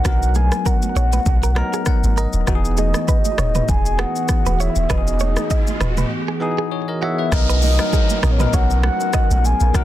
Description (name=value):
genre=afrobeats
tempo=99 BPM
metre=4/4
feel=swing 55% on 16ths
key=B major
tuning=A4 = 442 Hz
part: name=soft octave-layered synth lead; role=melody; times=0.0-9.8 s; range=C#5 to G#5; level=-24 LUFS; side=equal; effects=chorus, tremolo, ping-pong delay, plate reverb
part: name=bell-like tine electric piano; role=accompaniment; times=0.0-9.8 s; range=E3 to A#5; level=-26 LUFS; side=left 5 dB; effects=auto-pan, plate reverb
part: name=hollow soft pad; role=sustained chords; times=0.0-9.8 s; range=E3 to A#4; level=-30 LUFS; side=right 2 dB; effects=chorus, plate reverb
part: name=direct-recorded clean electric guitar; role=riff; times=0.1-9.3 s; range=F#4 to D#5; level=-28 LUFS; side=right 9 dB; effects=ping-pong delay
part: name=punchy sub bass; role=bass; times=0.1-9.8 s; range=D#1 to B1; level=-18 LUFS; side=equal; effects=none
part: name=deep house drum kit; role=drums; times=0.1-9.8 s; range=hi-hat, kick drum, rim click, shaker, toms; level=-20 LUFS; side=equal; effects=soft clipping on snare
part: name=congas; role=percussion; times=0.1-9.8 s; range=none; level=-32 LUFS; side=right 12 dB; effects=none
part: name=riser and downlifter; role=sound effects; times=3.8-9.8 s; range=none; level=-30 LUFS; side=right 1 dB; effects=none
room=little or no reverb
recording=dense, heavily limited modern master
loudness=-16 LUFS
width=side -13 dB against mid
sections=0.0-7.3 A section; 7.3-9.8 B section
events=tine electric piano fill 1.3-2.5; riser 3.8-7.3; break 6.1-7.3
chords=0.0 Bmaj7; 2.5 Emaj7; 7.3 Bmaj7